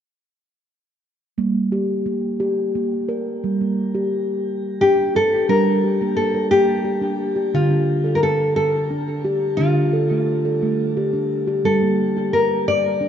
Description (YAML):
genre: world meditative, meditative tuned percussion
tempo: 58 BPM (dotted quarters)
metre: 6/8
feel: straight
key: G minor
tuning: A4 = 441 Hz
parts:
  - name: steel tongue drum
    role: arpeggios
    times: 1.4-13.1 s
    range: D3 to Bb4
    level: -20 LUFS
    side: right 1 dB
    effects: none
  - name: nylon-string guitar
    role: melody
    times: 4.8-13.1 s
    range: F4 to D5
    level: -19 LUFS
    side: left 2 dB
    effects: shimmer reverb, tape echo
room: wet concert hall reverb, RT60 1.9 s, small room ambience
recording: cassette tape, nothing above 7.5 kHz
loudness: -17 LUFS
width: side -9 dB against mid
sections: 1.4-3.4 A section; 3.4-13.1 B section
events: none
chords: 1.4 Gm; 7.5 Dm; 11.6 Gm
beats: | 1.38 2.40 | 3.43 4.46 | 5.48 6.51 | 7.54 8.56 | 9.59 10.62 | 11.64 12.67